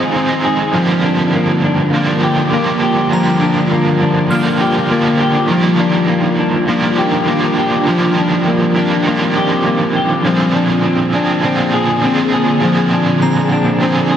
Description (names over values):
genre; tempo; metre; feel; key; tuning
dream pop; 101 BPM; 4/4; straight; unclear; A4 = 440 Hz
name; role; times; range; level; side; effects
crunchy overdriven guitar; accompaniment; 0.0-14.2 s; G2 to Ab4; -16 LUFS; right 3 dB; tremolo, analog chorus
ethereal airy pad; sustained chords; 0.0-14.2 s; D3 to Ab4; -19 LUFS; equal; ensemble chorus, built-in reverb
semi-hollow electric guitar; arpeggios; 0.0-14.2 s; F3 to Ab4; -15 LUFS; left 2 dB; wide subtle chorus, tape echo
glassy synth bell; texture; 0.0-5.5, 13.2-14.2 s; F5 to F6; -27 LUFS; right 1 dB; chorus, tape echo
room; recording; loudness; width
wet lush hall reverb, RT60 2.2 s; none; -12 LUFS; side -9 dB against mid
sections
0.0-14.2 A section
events
none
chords
0.0 Fm7; 0.8 Gm7; 5.5 Ebmaj9; 10.3 Bb9